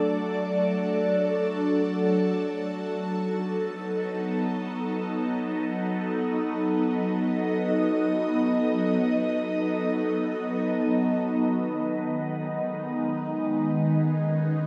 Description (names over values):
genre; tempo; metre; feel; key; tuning
ambient; free time; none; none; unclear; A4 = 440 Hz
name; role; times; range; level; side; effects
ethereal airy pad; solo; 0.0-14.7 s; D#3 to D#5; -26 LUFS; equal; ensemble chorus, built-in reverb, phaser, analog delay
room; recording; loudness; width
wet lush hall reverb, RT60 2.9 s; dreamy mix soaked in reverb; -26 LUFS; mono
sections
0.0-11.2 A section; 11.2-14.7 B section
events
none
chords
0.0 D; 1.8 B7; 11.2 C#sus2